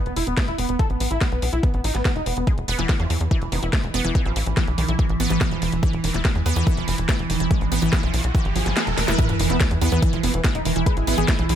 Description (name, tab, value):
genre	psychedelic trance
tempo	143 BPM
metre	4/4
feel	straight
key	E major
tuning	A4 = 440 Hz
part	wide unison lead	melody	0.0-2.4, 9.2-11.6 s	E3 to B4	-26 LUFS	equal	phaser, sidechain pumping, ping-pong delay
part	tight sequencer bass	bass	0.1-11.6 s	E1 to E2	-24 LUFS	equal	none
part	drum and bass drum kit	drums	0.1-11.6 s	hi-hat, snare drum	-27 LUFS	left 1 dB	overdrive
part	electronic kick drum	drums	0.4-11.4 s	none	-21 LUFS	equal	none
part	evolving wavetable pad	sustained chords	3.2-11.6 s	E3	-28 LUFS	right 4 dB	phaser, built-in reverb, sidechain pumping
part	wide unison pluck	riff	2.5-11.6 s	D#3 to E4	-26 LUFS	right 1 dB	auto-pan, sidechain pumping, digital delay
part	formant-sweep wobble bass	second line	3.5-4.3, 10.2-11.5 s	G#3 to B3	-38 LUFS	left 2 dB	none
part	riser and sub drop	sound effects	6.8-10.9 s	none	-30 LUFS	equal	none
room	little or no reverb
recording	none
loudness	-19 LUFS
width	side -10 dB against mid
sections	0.0-9.2 A section; 9.2-11.6 B section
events	riser 6.8-9.2; kick drops out 8.8-9.2; drum fill 9.0; drop 9.2-11.6; impact 9.2-10.9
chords	0.0 E5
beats	0.37 | 0.79 1.21 1.63 2.05 | 2.47 2.89 3.31 3.73 | 4.15 4.57 4.99 5.41 | 5.83 6.25 6.67 7.09 | 7.51 7.93 8.35 8.77 | 9.19 9.61 10.03 10.44 | 10.86 11.28